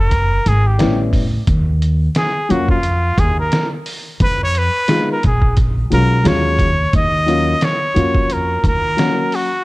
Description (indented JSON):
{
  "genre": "hip hop, jazz-hop",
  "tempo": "88 BPM",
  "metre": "4/4",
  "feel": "swing 57% on 16ths",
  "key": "Eb minor",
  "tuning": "A4 = 440 Hz",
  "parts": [
    { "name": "trumpet with straight mute", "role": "melody", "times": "0.0-9.6 s", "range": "F4 to Eb5", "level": "-19 LUFS", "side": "equal", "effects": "none" },
    { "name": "upright bass", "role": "bass", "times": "0.0-8.9 s", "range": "Gb1 to F2", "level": "-17 LUFS", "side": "equal", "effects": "none" },
    { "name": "trip hop sampler-style drum kit", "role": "drums", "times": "0.1-9.5 s", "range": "hi-hat, kick drum, snare drum", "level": "-18 LUFS", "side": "equal", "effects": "none" },
    { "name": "dark upright piano", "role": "accompaniment", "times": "0.8-9.5 s", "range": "Gb3 to Gb4", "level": "-20 LUFS", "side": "left 2 dB", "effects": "none" }
  ],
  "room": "studio reverb",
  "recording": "dark, warm production",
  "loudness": "-13 LUFS",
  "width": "side -20 dB against mid",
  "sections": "0.0-6.9 A section; 6.9-9.6 B section",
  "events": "muted trumpet solo 0.0-6.9",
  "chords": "0.0 Dbsus4 (rootless); 0.8 A9; 1.5 Ebsus2; 4.2 Fm7b5; 6.3 Ebm11; 6.9 Ebm9"
}